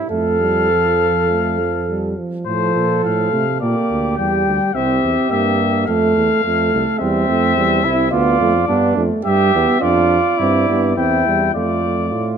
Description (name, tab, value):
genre	classical, imitative canzona for brass ensemble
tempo	105 BPM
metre	4/4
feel	straight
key	F major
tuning	A4 = 439 Hz
part	mellow flugelhorn	second line	0.0-12.4 s	C4 to A4	-19 LUFS	right 5 dB	none
part	warm trumpet	melody	0.1-12.4 s	C5 to G5	-20 LUFS	left 9 dB	none
part	dark trombone	accompaniment	0.1-12.4 s	F3 to D4	-20 LUFS	right 2 dB	none
part	mellow bass trombone	bass	0.1-12.4 s	C2 to C3	-22 LUFS	right 2 dB	none
room	moderate recital hall reverb, RT60 1.8 s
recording	close, detailed microphones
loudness	-14 LUFS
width	side -7 dB against mid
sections	0.0-2.5 A section; 2.5-11.5 B section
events	none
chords	0.1 F; 2.5 F/A; 3.6 Gm; 4.8 C; 5.9 F; 7.0 C/E; 8.1 Dm; 9.2 G; 10.4 C/G; 11.5 Dm/F